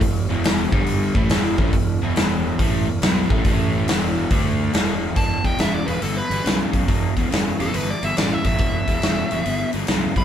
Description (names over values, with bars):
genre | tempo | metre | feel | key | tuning
blues rock power trio and southern rock | 140 BPM | 4/4 | swing 66% on 8ths | E minor | A4 = 441 Hz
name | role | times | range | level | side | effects
crunchy overdriven guitar | riff | 0.0-10.2 s | E2 to D4 | -24 LUFS | left 1 dB | none
fuzz fingered electric bass | bass | 0.0-10.2 s | E1 to D2 | -25 LUFS | equal | overdrive
big rock drum kit | drums | 0.0-10.2 s | hi-hat, kick drum, snare drum | -20 LUFS | equal | none
dark smooth lead guitar | melody | 5.2-10.2 s | A4 to B5 | -25 LUFS | equal | overdrive
room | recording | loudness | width
moderate studio reverb, RT60 0.5 s | band playing live in one room | -18 LUFS | side -9 dB against mid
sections
0.0-5.2 A section; 5.2-10.2 B section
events
lead electric guitar solo 5.2-10.2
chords
0.0 E5; 0.7 G5; 1.1 E5; 3.4 A5; 3.9 E5; 4.3 D5; 4.7 E5; 5.2 Em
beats
| 0.01 0.44 0.87 1.30 | 1.73 2.16 2.59 3.02 | 3.45 3.88 4.31 4.74 | 5.16 5.59 6.02 6.45 | 6.88 7.31 7.74 8.17 | 8.60 9.03 9.45 9.88